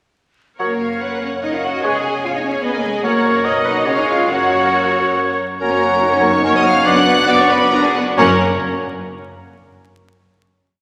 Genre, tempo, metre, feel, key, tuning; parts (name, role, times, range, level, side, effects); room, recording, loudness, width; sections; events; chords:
quick classical-period movement for symphony orchestra; 127-151 BPM; 3/4; rubato; F# major; A4 = 440 Hz
clear studio violin section; melody; 0.6-8.4 s; G#4 to F#6; -28 LUFS; equal
clear chamber violin section; second line; 0.6-8.4 s; F#4 to G#5; -26 LUFS; equal
large flute ensemble; second line; 0.6-8.4 s; G#4 to A#5; -25 LUFS; equal
warm clarinet; second line; 0.6-8.4 s; F#4 to B4; -32 LUFS; equal
warm oboe; second line; 0.6-8.4 s; C#5 to D#5; -21 LUFS; equal
rich chamber viola section; accompaniment; 0.6-8.4 s; A#3 to D#5; -23 LUFS; equal
warm bassoon; accompaniment; 0.6-8.4 s; F#3 to C#4; -26 LUFS; equal
dark French horn section; sustained chords; 0.6-8.4 s; F#3 to F#4; -27 LUFS; equal
clear chamber double bass section; bass; 0.6-8.4 s; E#1 to F#2; -33 LUFS; equal
rich symphonic cello section; bass; 0.6-8.4 s; F#2 to G#4; -26 LUFS; equal
wet concert hall reverb, RT60 2.0 s; vinyl crackle; -16 LUFS; mono
0.6-5.6 A section; 5.6-8.2 coda; 8.2-9.5 final chord
slowing down 5.0-8.2
0.6 F#; 1.8 C#7/E#; 3.0 F#; 3.4 B; 3.9 C#; 4.3 F#; 6.9 Bm/F#; 8.2 F#